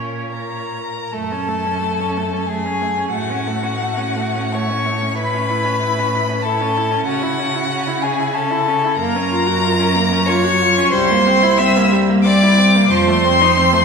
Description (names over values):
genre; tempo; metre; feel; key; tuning
classical, slow romantic movement for string quartet; 68-96 BPM; 3/4; rubato; F# minor; A4 = 440 Hz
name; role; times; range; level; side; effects
rich violin; melody; 0.0-13.8 s; Bb4 to E6; -19 LUFS; left 5 dB; none
rich violin; second line; 0.0-13.8 s; Db4 to E5; -21 LUFS; equal; none
clear viola; accompaniment; 0.0-13.8 s; F3 to Db5; -22 LUFS; right 2 dB; none
rich cello; bass; 0.0-13.8 s; C2 to C#3; -20 LUFS; right 1 dB; none
room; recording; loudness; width
wet concert hall reverb, RT60 2.1 s; recorded in a church or concert hall; -14 LUFS; side -5 dB against mid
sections
0.0-1.1 A section; 1.1-13.8 B section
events
none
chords
0.0 Bbm; 1.1 F#m; 3.1 F#m/A; 5.2 A; 7.1 A/C#; 9.0 Gbmaj7; 10.9 C7; 12.9 F7